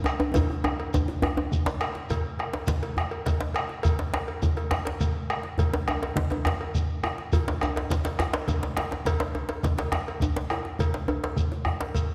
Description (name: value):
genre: west african traditional, West African drum ensemble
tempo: 138 BPM (dotted quarters)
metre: 12/8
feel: straight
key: none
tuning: none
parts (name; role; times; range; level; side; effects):
- djembe; percussion; 0.0-11.9 s; none; -33 LUFS; equal; none
- bombo; percussion; 0.1-12.1 s; none; -30 LUFS; equal; none
- cowbell; percussion; 0.1-12.1 s; none; -38 LUFS; equal; none
- shekere; percussion; 0.1-12.1 s; none; -42 LUFS; equal; none
- djembe; percussion; 0.2-11.8 s; none; -36 LUFS; equal; none
room: wet concert hall reverb, RT60 1.9 s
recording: none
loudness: -27 LUFS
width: mono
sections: 0.0-2.1 A section; 2.1-12.1 B section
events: drum fill 0.3-2.1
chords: none